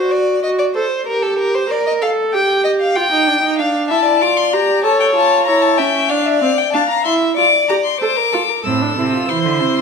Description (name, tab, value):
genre	classical, baroque-style fugue for string quartet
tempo	94 BPM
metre	4/4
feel	straight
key	unclear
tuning	A4 = 441 Hz
part	warm violin	second line	0.0-9.8 s	A4 to G5	-17 LUFS	left 2 dB	none
part	dark viola	accompaniment	0.0-9.8 s	C4 to Bb4	-18 LUFS	right 3 dB	none
part	rich violin	melody	3.9-9.8 s	E5 to E6	-16 LUFS	left 8 dB	none
part	warm cello	bass	8.7-9.8 s	A2 to E3	-19 LUFS	right 5 dB	none
room	moderate recital hall reverb, RT60 1.4 s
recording	minimal, uncompressed stereo recording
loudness	-13 LUFS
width	side -5 dB against mid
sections	0.0-8.7 A section; 8.7-9.8 B section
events	none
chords	0.0 D7/F#; 1.1 Gm; 2.3 G5; 3.6 Dm; 4.8 A7; 6.1 Dm; 7.4 Dm/F; 8.7 Am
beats	0.43 | 1.07 1.71 2.34 2.96 | 3.59 4.22 4.85 5.47 | 6.10 6.74 7.37 8.01 | 8.65 9.30